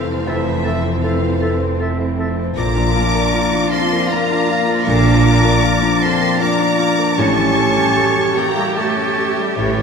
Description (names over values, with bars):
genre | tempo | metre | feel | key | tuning
cinematic, emotional film score for orchestra | 78 BPM | 3/4 | rubato | unclear | A4 = 438 Hz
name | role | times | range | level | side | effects
rich symphonic violin section | melody | 0.0-9.8 s | E5 to D6 | -23 LUFS | left 1 dB | none
dark clarinet | second line | 0.0-9.8 s | F4 to A4 | -27 LUFS | right 2 dB | none
warm oboe | second line | 0.0-9.8 s | C#5 to E5 | -27 LUFS | right 4 dB | none
warm symphonic violin section | second line | 0.0-9.8 s | C5 to Bb5 | -24 LUFS | left 2 dB | none
rich studio viola section | accompaniment | 0.0-9.8 s | D3 to G4 | -25 LUFS | right 4 dB | none
warm baby grand piano | accompaniment | 0.0-9.8 s | F2 to A4 | -23 LUFS | left 1 dB | none
dark French horn section | sustained chords | 0.0-9.8 s | E3 to D4 | -22 LUFS | equal | none
concert harp | arpeggios | 0.0-9.8 s | F2 to D6 | -23 LUFS | left 9 dB | none
rich chamber cello section | bass | 0.0-9.8 s | F2 to Bb2 | -24 LUFS | right 3 dB | none
rich symphonic double bass section | bass | 0.0-9.8 s | F1 to Bb1 | -22 LUFS | right 2 dB | none
hollow concert flute | second line | 0.3-9.8 s | A6 to Bb6 | -25 LUFS | left 1 dB | none
room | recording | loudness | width
wet scoring stage reverb, RT60 2.0 s | minimal, uncompressed stereo recording | -14 LUFS | side -6 dB against mid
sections
0.0-9.8 A section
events
none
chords
0.0 Fmaj7; 2.6 Bb; 7.2 A7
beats
| 0.27 1.04 1.80 | 2.57 3.34 4.10 | 4.87 5.64 6.41 | 7.19 7.97 8.77 | 9.58